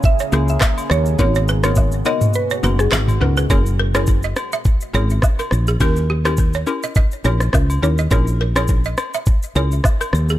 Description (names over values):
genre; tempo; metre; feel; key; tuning
afrobeats; 104 BPM; 4/4; swing 55% on 16ths; unclear; A4 = 441 Hz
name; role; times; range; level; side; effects
deep dark ambient pad; sustained chords; 0.0-3.5 s; B2 to G#4; -29 LUFS; equal; chorus, built-in reverb, sidechain pumping
afro-pop drum kit; drums; 0.0-10.4 s; handclaps, kick drum, rim click, shaker, toms; -18 LUFS; equal; none
mallet-like synth pluck; melody; 0.1-2.9 s; G#4 to E5; -24 LUFS; right 1 dB; chorus, ping-pong delay
balafon; riff; 0.2-10.4 s; G4 to E5; -25 LUFS; right 4 dB; ping-pong delay
hollow square pluck; accompaniment; 0.3-9.7 s; A#3 to A#4; -25 LUFS; left 4 dB; chorus
woody fretless electric bass; bass; 0.3-10.4 s; F#1 to D#2; -17 LUFS; equal; none
agogo bells and woodblock; percussion; 0.3-10.1 s; none; -29 LUFS; left 2 dB; none
room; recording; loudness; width
little or no reverb; none; -15 LUFS; side -14 dB against mid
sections
0.0-3.5 A section; 3.5-10.4 B section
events
kick muted 2.3-3.5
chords
0.0 A#m7b5; 1.2 G#m7; 3.5 F#9; 5.8 D#7b9; 8.1 A#m7b5